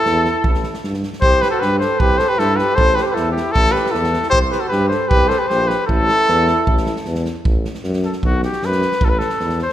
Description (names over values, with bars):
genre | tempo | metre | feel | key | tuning
balkan folk, Balkan brass band | 154 BPM | 2/4 | straight | A minor | A4 = 442 Hz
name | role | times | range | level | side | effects
warm cornet | melody | 0.0-9.7 s | F#4 to C5 | -17 LUFS | left 1 dB | none
mellow flugelhorn | second line | 0.0-7.0 s | E4 to A4 | -23 LUFS | right 2 dB | none
warm tuba | bass | 0.1-9.6 s | A1 to G2 | -22 LUFS | equal | none
natural country drum kit | percussion | 0.1-9.7 s | kick drum, snare drum | -21 LUFS | right 1 dB | none
room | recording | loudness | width
moderate scoring stage reverb, RT60 1.8 s | recorded in a church or concert hall | -14 LUFS | side -12 dB against mid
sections
0.0-1.2 A section; 1.2-7.5 A section; 7.5-9.7 B section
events
cornet solo 7.5-9.7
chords
0.0 A5; 1.2 C5; 2.8 A5; 4.3 C5; 5.9 A5; 7.5 F#m/A; 8.2 B5; 9.0 A5